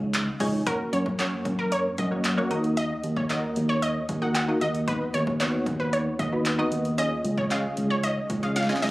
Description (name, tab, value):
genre	dance-pop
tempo	114 BPM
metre	4/4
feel	straight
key	F# major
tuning	A4 = 440 Hz
part	punchy chord stab	accompaniment	0.0-8.9 s	A#3 to F#5	-29 LUFS	equal	chorus, phaser, sidechain pumping
part	tine electric piano	bass	0.0-8.9 s	C#2 to F#2	-28 LUFS	equal	slow stereo tremolo, sidechain pumping
part	punchy analog drum machine	drums	0.1-8.9 s	handclaps, hi-hat, kick drum, snare drum	-31 LUFS	equal	none
part	wide unison pluck	melody	0.7-8.9 s	A#4 to F#5	-29 LUFS	equal	sidechain pumping
room	digital ambience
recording	recorded on a phone in the room, club reverb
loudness	-23 LUFS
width	side -19 dB against mid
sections	0.7-8.9 A section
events	drum fill 8.6-8.9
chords	0.0 C#sus2; 0.7 F#; 2.5 D#m; 4.9 B/D#; 7.0 C#add9